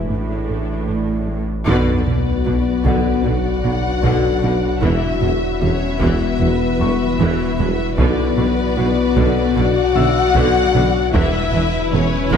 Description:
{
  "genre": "cinematic, hybrid orchestral and electronic film score",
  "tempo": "76 BPM",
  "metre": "4/4",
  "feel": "straight",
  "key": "B minor",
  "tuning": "A4 = 439 Hz",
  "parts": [
    { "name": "warm symphonic viola section", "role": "accompaniment", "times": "0.0-12.4 s", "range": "D3 to F#4", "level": "-26 LUFS", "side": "equal", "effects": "none" },
    { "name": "deep dark ambient pad", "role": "sustained chords", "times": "0.0-12.4 s", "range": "E3 to D5", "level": "-25 LUFS", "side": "left 1 dB", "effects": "chorus, built-in reverb" },
    { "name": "rich symphonic cello section", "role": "bass", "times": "0.0-12.4 s", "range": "E2 to B2", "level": "-26 LUFS", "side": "right 3 dB", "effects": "none" },
    { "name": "saturated sub bass", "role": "bass", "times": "0.0-12.4 s", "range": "E1 to B1", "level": "-25 LUFS", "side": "equal", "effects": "none" },
    { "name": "dark grand piano", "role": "texture", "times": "0.0-12.4 s", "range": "E5 to E6", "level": "-32 LUFS", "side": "left 3 dB", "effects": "digital delay" },
    { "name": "soft round pluck", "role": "arpeggios", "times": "0.1-12.4 s", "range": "E3 to B4", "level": "-30 LUFS", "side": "right 3 dB", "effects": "none" },
    { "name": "tight sequencer bass", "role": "riff", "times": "0.1-12.4 s", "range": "E2 to B3", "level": "-26 LUFS", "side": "right 3 dB", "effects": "none" },
    { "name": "rich studio violin section", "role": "melody", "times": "1.7-12.4 s", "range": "B4 to E5", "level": "-28 LUFS", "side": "left 6 dB", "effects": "none" },
    { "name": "dark symphonic violin section", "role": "second line", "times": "1.7-12.4 s", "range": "B4 to F#5", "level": "-25 LUFS", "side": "left 4 dB", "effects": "none" },
    { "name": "mellow French horn section", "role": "sustained chords", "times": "1.7-12.4 s", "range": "B3 to F#4", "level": "-21 LUFS", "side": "left 8 dB", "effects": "none" },
    { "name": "dark studio double bass section", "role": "bass", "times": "1.7-12.4 s", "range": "E1 to B1", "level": "-25 LUFS", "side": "right 4 dB", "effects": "none" },
    { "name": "mellow tuba", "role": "bass", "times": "1.7-12.4 s", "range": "E1 to B1", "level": "-25 LUFS", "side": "right 4 dB", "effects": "none" },
    { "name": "taiko ensemble", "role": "drums", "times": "1.7-12.4 s", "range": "none", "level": "-24 LUFS", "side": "equal", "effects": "none" },
    { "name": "sub drop", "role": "sound effects", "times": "1.7-4.8 s", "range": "none", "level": "-27 LUFS", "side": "equal", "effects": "none" }
  ],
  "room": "moderate concert hall reverb, RT60 2.0 s",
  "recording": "none",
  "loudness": "-15 LUFS",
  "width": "side -7 dB against mid",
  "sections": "0.0-1.7 A section; 1.7-12.4 B section",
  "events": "build-up 0.0-1.7; band accent 1.7-2.5; impact 1.7-4.8",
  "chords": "0.1 Asus4; 1.7 Bm; 4.8 Emadd9; 8.0 Bm; 11.1 E",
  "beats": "0.09 0.88 | 1.67 2.46 3.25 4.04 | 4.83 5.62 6.41 7.20 | 7.99 8.78 9.57 10.36 | 11.14 11.93"
}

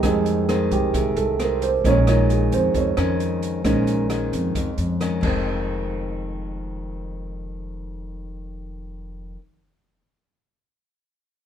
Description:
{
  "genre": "bossa nova",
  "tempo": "133 BPM",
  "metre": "4/4",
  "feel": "straight",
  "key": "F minor",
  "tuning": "A4 = 440 Hz",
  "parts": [
    { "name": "dark grand piano", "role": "accompaniment", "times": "0.0-5.3 s", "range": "G3 to Db5", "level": "-22 LUFS", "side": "right 5 dB", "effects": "none" },
    { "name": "nylon-string guitar", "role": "accompaniment", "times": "0.0-9.4 s", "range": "F2 to Db4", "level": "-27 LUFS", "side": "left 4 dB", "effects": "none" },
    { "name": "upright bass", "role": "bass", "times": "0.0-9.3 s", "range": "F1 to F2", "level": "-25 LUFS", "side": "equal", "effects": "none" },
    { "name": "open jazz drum kit", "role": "drums", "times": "0.0-5.3 s", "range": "crash cymbal, hi-hat, kick drum, rim click", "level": "-29 LUFS", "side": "equal", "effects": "none" }
  ],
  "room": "moderate large studio reverb, RT60 0.9 s",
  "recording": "minimal, uncompressed stereo recording",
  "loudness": "-19 LUFS",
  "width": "side -9 dB against mid",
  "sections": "0.0-5.5 A section; 5.5-9.1 B section",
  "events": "grand piano solo 0.0-5.5",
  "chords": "0.0 Fm7; 1.8 Bbm7; 5.2 Fm7",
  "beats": "| 0.04 0.49 0.94 1.39 | 1.84 2.29 2.75 3.20 | 3.65 4.10 4.55 5.00 | 5.46 5.91 6.36 6.81 | 7.26 7.71 8.17 8.62"
}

